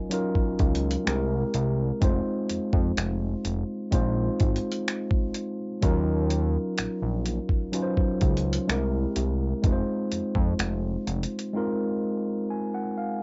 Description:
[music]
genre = contemporary R&B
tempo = 63 BPM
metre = 4/4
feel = straight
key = unclear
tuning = A4 = 442 Hz
[part]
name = mellow tine electric piano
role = accompaniment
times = 0.0-13.2 s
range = Gb3 to Ab5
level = -30 LUFS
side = equal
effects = cassette tape
[part]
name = dusty soul sampler-style drum kit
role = drums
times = 0.1-11.5 s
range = finger snaps, hi-hat, kick drum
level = -28 LUFS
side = equal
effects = overdrive, cassette tape
[part]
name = fat analog bass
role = bass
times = 0.6-11.3 s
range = F1 to F2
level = -30 LUFS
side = equal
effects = none
[sound]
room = light reverb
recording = home recording on cassette, nothing above 7.6 kHz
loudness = -27 LUFS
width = mono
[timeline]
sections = 0.0-13.2 A section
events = drums muted 11.5-13.2; tine electric piano fill 12.0-13.2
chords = 0.0 Ebm9; 1.1 C7b13; 2.0 Fm7; 5.8 Ebm9; 8.7 C7b13; 9.6 Fm7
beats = 0.12 1.07 | 2.02 2.97 3.93 4.88 | 5.83 6.78 7.74 8.69 | 9.64 10.59 11.54 12.50

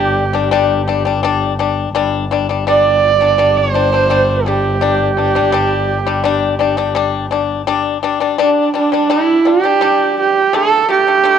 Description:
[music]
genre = mongolian traditional, Mongolian folk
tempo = 84 BPM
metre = 4/4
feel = straight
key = G zhi mode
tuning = A4 = 440 Hz
[part]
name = clear horsehead fiddle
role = melody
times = 0.0-11.4 s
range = D4 to D5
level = -14 LUFS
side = right 6 dB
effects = cassette tape, analog delay
[part]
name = pipa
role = arpeggios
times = 0.0-11.4 s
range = D3 to D4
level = -16 LUFS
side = left 9 dB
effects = cassette tape
[part]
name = muted double bass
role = drone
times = 0.0-7.8 s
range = G1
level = -21 LUFS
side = left 1 dB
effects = cassette tape
[sound]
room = moderate spring reverb, RT60 1.4 s, small room ambience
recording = home recording on cassette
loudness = -12 LUFS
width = side -8 dB against mid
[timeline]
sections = 0.0-7.7 A section; 7.7-11.4 B section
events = none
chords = 0.0 G5; 10.5 D5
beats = 0.52 1.24 | 1.95 2.67 3.39 4.11 | 4.82 5.54 6.25 6.97 | 7.68 8.40 9.11 9.82 | 10.54 11.25

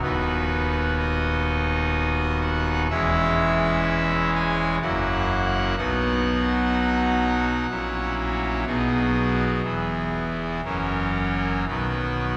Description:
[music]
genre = classical, chorale-style piece for pipe organ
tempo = 62 BPM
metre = 3/4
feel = rubato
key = B major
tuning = A4 = 438 Hz
[part]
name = pipe organ, trumpet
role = solo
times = 0.0-12.4 s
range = D#1 to G#5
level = -23 LUFS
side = equal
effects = none
[sound]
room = wet church reverb, RT60 2.9 s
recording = none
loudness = -23 LUFS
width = mono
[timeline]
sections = 0.0-12.4 A section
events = none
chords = 0.0 B/D#; 2.9 C#m/E; 4.8 F#7; 5.8 B; 7.7 F#7/A#; 8.7 B; 9.7 E; 10.6 F#7; 11.7 B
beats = | 0.02 0.98 1.95 | 2.91 3.88 4.83 | 5.79 6.74 7.71 | 8.68 9.65 10.65 | 11.68

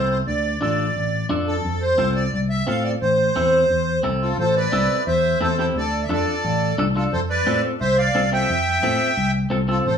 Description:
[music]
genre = latin, cumbia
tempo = 175 BPM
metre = 4/4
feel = straight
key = unclear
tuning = A4 = 441 Hz
[part]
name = accordion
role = melody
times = 0.0-10.0 s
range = F4 to G5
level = -21 LUFS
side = right 1 dB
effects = light tremolo tuning
[part]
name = clean electric guitar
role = accompaniment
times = 0.0-9.9 s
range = C4 to A4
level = -25 LUFS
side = left 1 dB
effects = none
[part]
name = fingered electric bass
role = bass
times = 0.0-10.0 s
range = A1 to A2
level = -23 LUFS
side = left 1 dB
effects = none
[sound]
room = wet studio reverb, RT60 0.7 s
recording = band playing live in one room, studio reverb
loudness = -18 LUFS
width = side -7 dB against mid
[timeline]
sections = 0.0-4.4 A section; 4.4-10.0 B section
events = none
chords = 0.3 Dm; 1.6 F; 3.0 Am; 5.8 Dm; 7.1 Fadd9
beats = | 0.27 0.62 0.96 1.30 | 1.64 1.99 2.33 2.67 | 3.02 3.36 3.70 4.04 | 4.39 4.73 5.07 5.41 | 5.76 6.10 6.44 6.78 | 7.12 7.47 7.81 8.15 | 8.49 8.84 9.18 9.52 | 9.86

